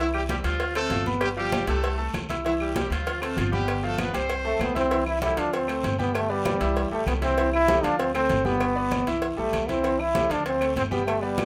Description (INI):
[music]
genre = latin, salsa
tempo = 195 BPM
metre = 4/4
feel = straight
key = C major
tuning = A4 = 441 Hz
[part]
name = bright horn section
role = melody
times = 0.0-4.8 s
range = E3 to C5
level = -31 LUFS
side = equal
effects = none
[part]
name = bright concert grand piano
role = accompaniment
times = 0.0-11.4 s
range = E3 to F6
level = -32 LUFS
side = equal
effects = none
[part]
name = upright bass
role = bass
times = 0.0-11.4 s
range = G1 to D2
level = -34 LUFS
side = equal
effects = none
[part]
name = claves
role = percussion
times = 0.1-11.4 s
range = none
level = -42 LUFS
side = equal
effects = none
[part]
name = congas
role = percussion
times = 0.1-11.4 s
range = none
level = -36 LUFS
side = equal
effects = none
[part]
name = cowbell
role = percussion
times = 0.3-11.4 s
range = none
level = -36 LUFS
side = equal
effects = none
[part]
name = guiro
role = percussion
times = 0.3-11.4 s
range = none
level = -43 LUFS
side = equal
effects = none
[part]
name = clear trombone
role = melody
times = 4.5-11.4 s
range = G3 to E4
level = -27 LUFS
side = equal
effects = none
[sound]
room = wet small room reverb, RT60 0.5 s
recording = none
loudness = -25 LUFS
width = mono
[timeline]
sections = 0.0-4.9 A section; 4.9-11.4 B section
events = none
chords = 0.0 C; 0.6 Dm7; 1.2 G7; 1.8 C6; 3.1 Dm7; 3.7 G7; 4.3 C6; 5.5 Dm7; 6.1 G; 6.8 C6; 8.0 Dm7; 8.6 G; 9.2 C6; 10.5 Dm7